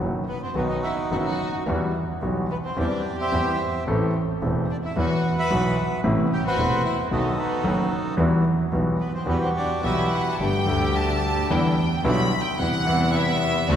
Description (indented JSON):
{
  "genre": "tango",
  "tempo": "110 BPM",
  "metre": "4/4",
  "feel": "rubato",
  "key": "E minor, G major from 10.4 s",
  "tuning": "A4 = 440 Hz",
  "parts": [
    { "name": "warm grand piano", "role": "accompaniment", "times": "0.0-13.8 s", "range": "E1 to A4", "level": "-24 LUFS", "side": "left 1 dB", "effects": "none" },
    { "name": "clear double bass", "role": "bass", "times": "0.0-13.8 s", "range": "E1 to E2", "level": "-27 LUFS", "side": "right 2 dB", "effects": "none" },
    { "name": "bandoneon", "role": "melody", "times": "0.3-10.4 s", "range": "D#4 to B5", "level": "-28 LUFS", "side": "equal", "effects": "none" },
    { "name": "clear studio violin section", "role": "second line", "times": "0.3-13.8 s", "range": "B3 to B5", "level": "-30 LUFS", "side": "left 1 dB", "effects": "none" },
    { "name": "rich studio string section", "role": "stabs", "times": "10.4-13.8 s", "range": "G3 to G4", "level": "-31 LUFS", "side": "equal", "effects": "none" }
  ],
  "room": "wet church reverb, RT60 3.0 s",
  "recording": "recorded in a church or concert hall",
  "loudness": "-21 LUFS",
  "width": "side -9 dB against mid",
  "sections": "0.0-10.4 A section; 10.4-13.8 B section",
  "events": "violin section solo 10.4-13.8",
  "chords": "0.0 B; 1.7 Emadd9; 2.8 C/E; 3.9 Am; 5.0 Esus2; 6.0 Amadd9; 7.1 B7; 8.2 Emadd9; 10.4 Gsus2; 11.5 Em7; 12.6 Cmaj7/E"
}